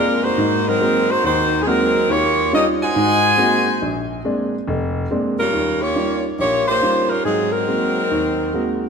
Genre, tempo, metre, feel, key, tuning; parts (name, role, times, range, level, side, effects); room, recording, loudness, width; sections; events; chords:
jazz; 140 BPM; 4/4; swing 65% on 8ths; A4 = 440 Hz
clear saxophone section; melody; 0.0-8.8 s; Gb3 to Ab5; -17 LUFS; equal
warm grand piano; accompaniment; 0.0-8.8 s; F1 to Gb4; -20 LUFS; right 1 dB
wet concert hall reverb, RT60 2.0 s; -16 LUFS; side -6 dB against mid
0.0-5.5 A section; 5.5-8.9 B section
0.4 Ab9; 2.1 Eb9; 3.0 Ab9; 3.8 Bb9; 5.5 Eb9; 7.2 Ab9